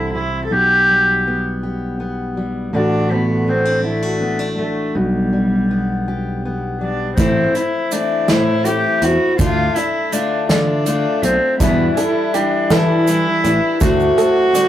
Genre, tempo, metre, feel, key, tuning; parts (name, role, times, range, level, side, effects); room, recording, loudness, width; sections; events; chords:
indie folk with a building arrangement; 54 BPM (dotted quarters); 6/8; straight; G major; A4 = 441 Hz
warm cello; melody; 0.0-14.7 s; G3 to A4; -18 LUFS; equal
fingerpicked steel-string acoustic guitar; accompaniment; 0.0-7.2 s; A2 to G4; -22 LUFS; equal
picked electric bass; bass; 0.0-14.1 s; A1 to E3; -22 LUFS; equal
picked steel-string acoustic guitar; accompaniment; 7.2-14.7 s; E2 to F#4; -18 LUFS; left 3 dB
unplugged drum kit; drums; 7.2-14.7 s; hi-hat, kick drum, snare drum; -20 LUFS; equal
egg shaker; percussion; 7.2-14.7 s; -32 LUFS; right 6 dB
open-back banjo; arpeggios; 11.6-14.7 s; G3 to B4; -22 LUFS; right 6 dB; analog delay
moderate small room reverb, RT60 0.5 s; rough rehearsal-room recording, warm saturation; -14 LUFS; side -12 dB against mid
0.0-7.2 A section; 7.2-14.7 B section
0.0 C; 0.5 G/B; 2.7 D/A; 5.0 G/B; 7.2 Am; 9.4 Dm; 11.6 Em7; 13.8 D7